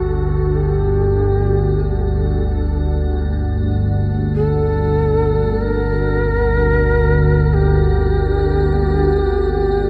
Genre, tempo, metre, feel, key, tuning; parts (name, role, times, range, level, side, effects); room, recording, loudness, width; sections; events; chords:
dark ambient drone; free time; G harmonic minor; A4 = 441 Hz
breathy mellow shakuhachi; melody; 0.0-9.9 s; F#4 to Bb4; -22 LUFS; equal; diffuse ambient delay
dark analog pad; sustained chords; 0.0-9.9 s; G3 to D4; -32 LUFS; equal; chorus
dark detuned synth bell; arpeggios; 0.0-9.9 s; barely audible
organ-like drone; drone; 0.0-9.9 s; G1 to D2; -19 LUFS; equal; ensemble chorus, built-in reverb
icy glass pad; texture; 0.0-9.9 s; D4 to F#5; -35 LUFS; equal; chorus, built-in reverb
wet huge ambient reverb, RT60 8.2 s; dark, warm production; -17 LUFS; mono
0.0-9.9 A section
fade-in on analog synth pad 0.0-9.9
0.0 Gmmaj7